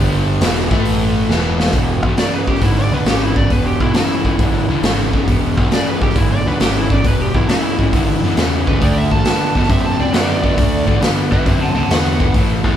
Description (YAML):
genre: blues rock power trio and southern rock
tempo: 136 BPM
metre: 4/4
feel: swing 68% on 8ths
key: E mixolydian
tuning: A4 = 439 Hz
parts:
  - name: overdriven semi-hollow guitar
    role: riff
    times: 0.0-12.8 s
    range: E2 to C4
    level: -18 LUFS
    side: left 1 dB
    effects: none
  - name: fuzz picked electric bass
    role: bass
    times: 0.0-12.8 s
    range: E1 to F#2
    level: -20 LUFS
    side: equal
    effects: overdrive
  - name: raw garage drum kit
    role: drums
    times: 0.4-12.7 s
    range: hi-hat, kick drum, snare drum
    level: -17 LUFS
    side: equal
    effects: none
  - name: overdriven slide guitar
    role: melody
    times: 2.2-12.3 s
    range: E4 to A5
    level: -22 LUFS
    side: right 1 dB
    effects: none
room: moderate large studio reverb, RT60 1.3 s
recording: band playing live in one room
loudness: -13 LUFS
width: side -10 dB against mid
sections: 0.0-1.7 A section; 1.7-12.8 B section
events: drum fill 1.3-1.7; electric slide guitar solo 1.7-12.8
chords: 0.4 E5; 0.6 A5; 1.3 E5; 1.7 E; 8.8 D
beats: 0.41 0.86 1.30 | 1.74 2.18 2.62 3.07 | 3.51 3.95 4.39 4.83 | 5.28 5.72 6.16 6.60 | 7.04 7.49 7.93 8.37 | 8.81 9.25 9.69 10.13 | 10.58 11.02 11.46 11.90 | 12.34